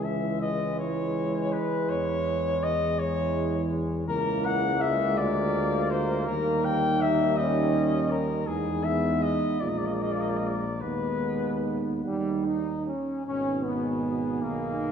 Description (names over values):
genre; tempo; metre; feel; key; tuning
classical, hymn-like piece for brass band; 48-56 BPM (dotted quarters); 6/8; rubato; C# minor, G# minor from 4.1 s; A4 = 437 Hz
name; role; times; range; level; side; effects
mellow flugelhorn; melody; 0.0-14.9 s; G#4 to G5; -29 LUFS; left 4 dB; none
mellow French horn section; second line; 0.0-14.9 s; D#4 to E#4; -33 LUFS; right 8 dB; none
dark trombone; accompaniment; 0.0-14.9 s; B2 to G#3; -34 LUFS; right 3 dB; none
warm trombone section; accompaniment; 0.0-14.9 s; G3 to D#4; -32 LUFS; left 1 dB; none
mellow tuba; bass; 0.0-14.9 s; G#1 to E2; -31 LUFS; equal; none
room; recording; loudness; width
wet concert hall reverb, RT60 2.4 s; recorded in a church or concert hall; -24 LUFS; side -7 dB against mid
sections
0.0-13.3 A section; 13.3-14.9 B section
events
none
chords
0.0 C#m; 1.9 C#m/E; 4.1 A#m7b5/C#; 5.2 A#7/D; 6.3 D#; 7.4 D#7; 8.5 Emaj7; 9.6 A#5; 10.8 G#m/D#; 12.0 D#; 13.3 G#m